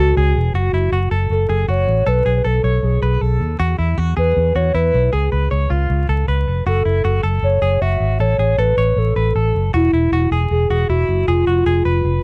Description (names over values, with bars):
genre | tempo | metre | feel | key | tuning
jangly indie pop | 156 BPM | 4/4 | straight | F# minor | A4 = 440 Hz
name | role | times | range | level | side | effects
hollow clarinet-like synth lead | melody | 0.0-12.2 s | E4 to E5 | -21 LUFS | equal | chorus
direct-recorded clean electric guitar | arpeggios | 0.0-12.2 s | E4 to C#5 | -26 LUFS | equal | harmonic tremolo
vintage muted fingered electric bass | bass | 0.0-12.2 s | E1 to E2 | -19 LUFS | equal | none
room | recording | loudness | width
little or no reverb | dry, close 1970s-style studio recording, vinyl crackle | -17 LUFS | mono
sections
0.6-12.2 A section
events
none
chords
0.0 C#sus4; 0.6 F#m7; 2.1 B7(no3); 3.6 E; 5.1 C#7; 6.7 F#m7; 8.2 Amaj7; 9.7 E; 11.3 Fdim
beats
0.17 | 0.55 0.93 1.31 1.69 | 2.07 2.45 2.83 3.21 | 3.60 3.98 4.36 4.74 | 5.12 5.51 5.89 6.28 | 6.66 7.04 7.43 7.81 | 8.20 8.58 8.96 9.35 | 9.73 10.12 10.50 10.89 | 11.27 11.66 12.04